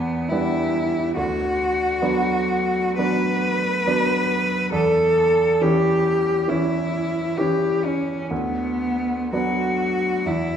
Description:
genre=classical, romantic duo for cello and grand piano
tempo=57-72 BPM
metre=4/4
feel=rubato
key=B minor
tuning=A4 = 441 Hz
part: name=rich cello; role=melody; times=0.0-10.6 s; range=B3 to B4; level=-21 LUFS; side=left 1 dB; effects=none
part: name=bright baby grand piano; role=accompaniment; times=0.0-10.6 s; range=D2 to D4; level=-23 LUFS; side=right 2 dB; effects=none
room=wet recital hall reverb, RT60 1.6 s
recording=heard from further back in the room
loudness=-19 LUFS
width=side -8 dB against mid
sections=0.0-10.6 A section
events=none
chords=0.0 Em7; 1.2 Bm/D; 4.7 C#dim/E; 8.3 Bm/D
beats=0.30 | 1.16 2.02 2.98 3.86 | 4.72 5.61 6.49 7.39 | 8.31 9.32 10.25

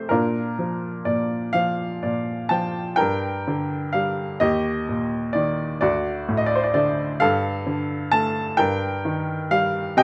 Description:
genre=classical, lyrical solo piano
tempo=43 BPM (dotted quarters)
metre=6/8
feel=rubato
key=G minor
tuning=A4 = 440 Hz
part: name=clear upright piano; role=solo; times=0.0-10.0 s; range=D2 to A5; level=-23 LUFS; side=equal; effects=none
room=light reverb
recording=close, detailed microphones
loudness=-23 LUFS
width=mono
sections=0.0-3.0 A section; 3.0-10.0 B section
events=upright piano fill 1.5-3.0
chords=0.1 Bb; 3.0 Gm; 4.4 Eb; 5.8 D; 7.2 Gsus2; 8.6 Eb/G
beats=| 0.10 1.54 | 2.99 4.41 | 5.82 7.21 | 8.59 9.98

